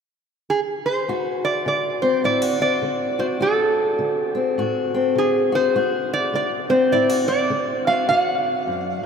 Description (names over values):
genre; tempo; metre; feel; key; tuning
acoustic country blues, solo or duo; 103 BPM; 4/4; swing 61% on 8ths; D mixolydian; A4 = 435 Hz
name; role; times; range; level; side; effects
metal-body resonator slide guitar; melody; 0.5-9.1 s; G#4 to F#5; -21 LUFS; right 2 dB; none
fingerpicked steel-string acoustic guitar; accompaniment; 1.1-9.1 s; D2 to F#4; -22 LUFS; left 3 dB; none
room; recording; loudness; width
wet cathedral reverb, RT60 5.8 s; in a vast, echoing space; -18 LUFS; side -6 dB against mid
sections
0.0-1.1 A section; 1.1-9.1 B section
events
none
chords
0.0 N.C.; 1.1 D7